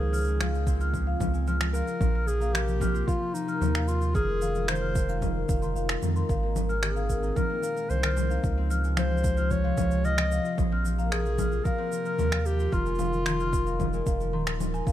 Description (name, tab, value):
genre	folktronica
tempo	112 BPM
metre	4/4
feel	straight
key	F minor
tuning	A4 = 440 Hz
part	mellow clarinet	melody	0.0-14.3 s	Eb4 to Eb5	-32 LUFS	left 1 dB	ping-pong delay
part	warbly tape-like pad	sustained chords	0.0-14.9 s	Bb2 to Ab4	-39 LUFS	equal	chorus, built-in reverb
part	concert harp	arpeggios	0.0-14.9 s	Eb3 to F4	-33 LUFS	left 4 dB	none
part	warm sub bass	bass	0.0-14.9 s	Eb1 to F2	-28 LUFS	right 1 dB	none
part	marimba with medium mallets	second line	0.1-14.9 s	F5 to F6	-36 LUFS	left 3 dB	vintage 12-bit sampler grit, ping-pong delay
part	electronic shaker, finger snaps and congas	drums	0.1-14.9 s	none	-32 LUFS	equal	none
part	electronic kick drum	drums	0.7-14.9 s	none	-29 LUFS	right 1 dB	none
room	digital ambience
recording	none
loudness	-24 LUFS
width	side -12 dB against mid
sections	0.0-14.9 A section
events	kick drops out 14.3-14.9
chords	0.0 Dbmaj7; 2.0 Bbsus2; 4.2 Fm7; 6.3 Abadd9; 8.4 Dbmaj7; 10.6 Bbsus2; 12.7 Fm7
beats	0.40 0.94 1.47 | 2.01 2.54 3.08 3.62 | 4.15 4.69 5.22 5.76 | 6.29 6.83 7.37 7.90 | 8.44 8.97 9.51 10.04 | 10.58 11.12 11.65 12.19 | 12.72 13.26 13.79 14.33 | 14.87